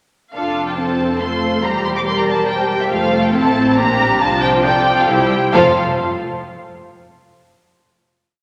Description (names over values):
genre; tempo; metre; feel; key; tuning
quick classical-period movement for symphony orchestra; 139 BPM; 3/4; straight; F major; A4 = 439 Hz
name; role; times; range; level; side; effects
muted studio violin section; melody; 0.3-5.8 s; E5 to D6; -21 LUFS; equal; none
muted studio violin section; second line; 0.3-5.8 s; F4 to D5; -22 LUFS; equal; none
muted studio viola section; accompaniment; 0.3-5.8 s; F3 to A4; -21 LUFS; equal; none
muted studio cello section; bass; 0.3-5.8 s; E2 to C3; -31 LUFS; equal; none
muted studio double bass section; bass; 0.3-5.8 s; E1 to C2; -29 LUFS; equal; none
room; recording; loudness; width
wet concert hall reverb, RT60 2.1 s; none; -16 LUFS; mono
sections
0.3-5.5 A section; 5.5-6.9 final chord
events
none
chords
0.3 F; 1.6 C7/E; 2.9 F; 3.8 Bb; 4.2 F/C; 5.1 C; 5.5 N.C.